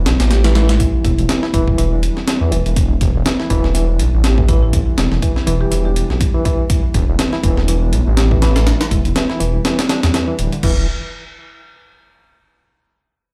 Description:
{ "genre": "breakbeat, breaks", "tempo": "122 BPM", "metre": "4/4", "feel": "swing 56% on 16ths", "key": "unclear", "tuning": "A4 = 438 Hz", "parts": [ { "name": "reed electric piano", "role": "riff", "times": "0.0-10.9 s", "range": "D3 to E4", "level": "-24 LUFS", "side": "equal", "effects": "fast tremolo, delay" }, { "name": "dark detuned saw bass", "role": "bass", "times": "0.0-10.9 s", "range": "D1 to E2", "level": "-18 LUFS", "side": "equal", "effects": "none" }, { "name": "breakbeat sampler-style drum kit", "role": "drums", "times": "0.1-10.7 s", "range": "crash cymbal, hi-hat, kick drum, snare drum", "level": "-19 LUFS", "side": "equal", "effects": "none" }, { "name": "marimba with soft mallets", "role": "melody", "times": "0.3-9.3 s", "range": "E4 to G4", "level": "-30 LUFS", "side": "equal", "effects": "telephone sound, delay" } ], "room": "little or no reverb", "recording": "played on a big sound system in a bare room, large studio reverb", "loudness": "-16 LUFS", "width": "mono", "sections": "0.0-10.6 A section; 10.6-12.6 B section", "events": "drop 0.0-10.6", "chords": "0.0 Em; 10.6 N.C." }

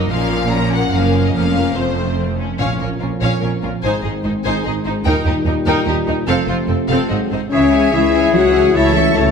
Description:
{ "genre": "cinematic, heroic adventure film score", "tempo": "146 BPM", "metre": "3/4", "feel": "straight", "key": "Bb minor", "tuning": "A4 = 441 Hz", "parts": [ { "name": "rich symphonic violin section", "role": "second line", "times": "0.0-9.3 s", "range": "C4 to C#6", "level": "-23 LUFS", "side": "left 4 dB", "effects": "none" }, { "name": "rich symphonic viola section", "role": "accompaniment", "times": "0.0-9.3 s", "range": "F3 to E5", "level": "-23 LUFS", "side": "right 2 dB", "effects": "none" }, { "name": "dark French horn section", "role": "sustained chords", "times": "0.0-9.3 s", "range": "G3 to F#4", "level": "-19 LUFS", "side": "left 7 dB", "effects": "none" }, { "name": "rich symphonic cello section", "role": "bass", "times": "0.0-9.3 s", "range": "Eb2 to F#3", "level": "-22 LUFS", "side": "right 4 dB", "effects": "none" }, { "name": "warm symphonic double bass section", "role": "bass", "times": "0.0-9.3 s", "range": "F1 to Eb2", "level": "-22 LUFS", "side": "right 4 dB", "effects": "none" }, { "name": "clear symphonic violin section", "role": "melody", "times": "0.1-9.3 s", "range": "A4 to Bb5", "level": "-25 LUFS", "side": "left 4 dB", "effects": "none" }, { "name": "dark trombone section", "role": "sustained chords", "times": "2.6-9.3 s", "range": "F2 to A3", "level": "-25 LUFS", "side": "right 4 dB", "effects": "none" }, { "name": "timpani", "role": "percussion", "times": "2.6-3.2 s", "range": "Bb2", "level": "-26 LUFS", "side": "left 1 dB", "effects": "none" }, { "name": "clear clarinet", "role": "second line", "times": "7.5-9.3 s", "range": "C#5 to E5", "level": "-25 LUFS", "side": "left 4 dB", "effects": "none" }, { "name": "clear oboe", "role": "second line", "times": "7.5-9.3 s", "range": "G#4 to A4", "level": "-23 LUFS", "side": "right 1 dB", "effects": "none" }, { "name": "hollow large flute ensemble", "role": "second line", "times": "7.5-9.3 s", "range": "E5", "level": "-24 LUFS", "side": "left 5 dB", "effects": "none" }, { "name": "mellow tuba", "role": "bass", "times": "7.5-9.3 s", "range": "C#2", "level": "-22 LUFS", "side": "right 6 dB", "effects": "none" } ], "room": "moderate concert hall reverb, RT60 1.9 s", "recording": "none", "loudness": "-14 LUFS", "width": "side -6 dB against mid", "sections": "0.0-2.6 A section; 2.6-7.5 B section; 7.5-9.3 C section", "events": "none", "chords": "0.1 Bbm; 1.3 Bbm/F; 1.8 F; 2.6 Bbm; 3.8 Ab; 5.1 Eb; 6.3 F; 7.1 Ab7; 7.5 C#m; 8.8 A/C#" }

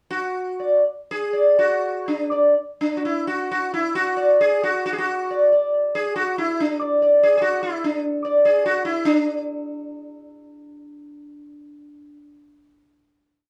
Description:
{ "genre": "indian classical", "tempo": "122-168 BPM", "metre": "5/4", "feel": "straight", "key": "unclear", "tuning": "A4 = 439 Hz", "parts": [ { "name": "sitar", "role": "solo", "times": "0.1-12.2 s", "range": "D4 to D5", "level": "-21 LUFS", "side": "equal", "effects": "none" } ], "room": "light reverb", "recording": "dark, warm production", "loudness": "-20 LUFS", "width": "mono", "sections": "0.1-9.0 theme; 9.0-10.9 final note", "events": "speeding up 0.1-10.9", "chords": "none" }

